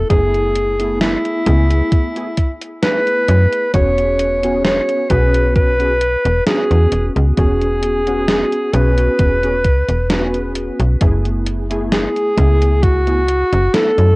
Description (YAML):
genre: vaporwave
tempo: 66 BPM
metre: 4/4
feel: swing 53% on 16ths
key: E major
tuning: A4 = 439 Hz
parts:
  - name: breathy alto saxophone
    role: melody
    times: 0.0-14.2 s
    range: E4 to C#5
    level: -17 LUFS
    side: equal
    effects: vintage 12-bit sampler grit, cassette tape, tape echo
  - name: warbly lo-fi synth keys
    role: accompaniment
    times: 0.0-14.2 s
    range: A3 to A4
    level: -22 LUFS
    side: equal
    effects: ensemble chorus
  - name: slap-like FM bass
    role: bass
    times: 0.0-14.1 s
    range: E1 to F#2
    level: -16 LUFS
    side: equal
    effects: tube saturation
  - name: electronic kick drum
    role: drums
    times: 0.1-13.0 s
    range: none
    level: -15 LUFS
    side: equal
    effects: cassette tape
  - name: gated 80s digital drum machine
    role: drums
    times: 0.1-14.2 s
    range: hi-hat, snare drum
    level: -20 LUFS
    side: equal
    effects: gated reverb, gated reverb snare, cassette tape
room: digital ambience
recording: home recording on cassette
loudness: -13 LUFS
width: side -24 dB against mid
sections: 0.0-14.2 A section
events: none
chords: 0.0 F#m11; 3.7 E69; 11.0 F#m11